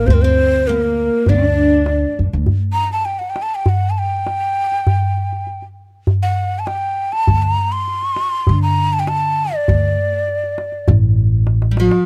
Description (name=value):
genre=Arabic maqam ensemble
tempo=100 BPM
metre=4/4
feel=straight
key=D maqam hijaz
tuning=A4 = 438 Hz
part: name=breathy ney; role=melody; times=0.0-12.1 s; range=F#4-46c to C6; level=-21 LUFS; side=equal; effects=none
part: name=dark chamber cello section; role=second line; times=0.0-2.2, 11.8-12.1 s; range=F#3-50c to D4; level=-23 LUFS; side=equal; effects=none
part: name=oud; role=second line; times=0.0-2.1, 11.7-12.1 s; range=F#3-50c to D4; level=-26 LUFS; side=equal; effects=none
part: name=upright bass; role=bass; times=0.0-2.5, 7.3-11.9 s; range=A1 to D3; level=-20 LUFS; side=equal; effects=none
part: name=darbuka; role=percussion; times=0.1-12.1 s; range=none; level=-20 LUFS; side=equal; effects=none
room=little or no reverb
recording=dry, close 1970s-style studio recording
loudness=-17 LUFS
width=mono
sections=0.0-2.5 A section; 2.5-12.1 B section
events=drum fill 11.5-12.1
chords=none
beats=| 0.07 0.68 1.28 1.88 | 2.48 3.08 3.68 4.28 | 4.88 5.48 6.08 6.68 | 7.28 7.88 8.48 9.08 | 9.68 10.28 10.88 11.48